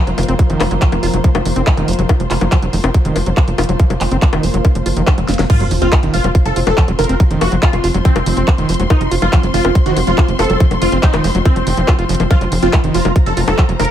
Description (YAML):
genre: psychedelic trance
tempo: 141 BPM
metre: 4/4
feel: straight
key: unclear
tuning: A4 = 440 Hz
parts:
  - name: evolving wavetable pad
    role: sustained chords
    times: 0.0-13.9 s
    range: F3 to F4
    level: -23 LUFS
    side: right 1 dB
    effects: phaser, built-in reverb, sidechain pumping
  - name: overdriven acid bass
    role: riff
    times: 0.0-13.8 s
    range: Eb3 to F4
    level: -21 LUFS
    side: equal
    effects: distortion, auto-pan, sidechain pumping, tape echo
  - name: dark symphonic string section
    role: texture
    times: 0.0-13.9 s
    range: F4 to C6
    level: -26 LUFS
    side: left 2 dB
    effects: sidechain pumping
  - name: tight sequencer bass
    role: bass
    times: 0.1-13.9 s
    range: F1 to Gb1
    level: -18 LUFS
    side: equal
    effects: none
  - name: drum and bass drum kit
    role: drums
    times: 0.1-13.9 s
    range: bongos, crash cymbal, handclaps, hi-hat, snare drum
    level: -21 LUFS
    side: left 3 dB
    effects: studio reverb
  - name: electronic kick drum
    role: drums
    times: 0.4-13.7 s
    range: none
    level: -11 LUFS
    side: equal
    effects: studio reverb
  - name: formant-sweep wobble bass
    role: second line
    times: 1.0-1.7, 6.6-8.3, 13.4-13.5 s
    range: F3 to Eb4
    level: -34 LUFS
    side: left 4 dB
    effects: none
  - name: supersaw stab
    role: melody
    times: 5.5-13.9 s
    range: C4 to Bb4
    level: -20 LUFS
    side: right 1 dB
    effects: phaser, vintage 12-bit sampler grit, sidechain pumping, digital delay
  - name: sub drop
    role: sound effects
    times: 5.6-7.2 s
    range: none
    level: -23 LUFS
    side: equal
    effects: none
room: little or no reverb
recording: none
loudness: -11 LUFS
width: side -10 dB against mid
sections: 0.0-5.5 A section; 5.5-13.9 B section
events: drum fill 5.3; drop 5.5-13.9; impact 5.5-7.2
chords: 0.0 F5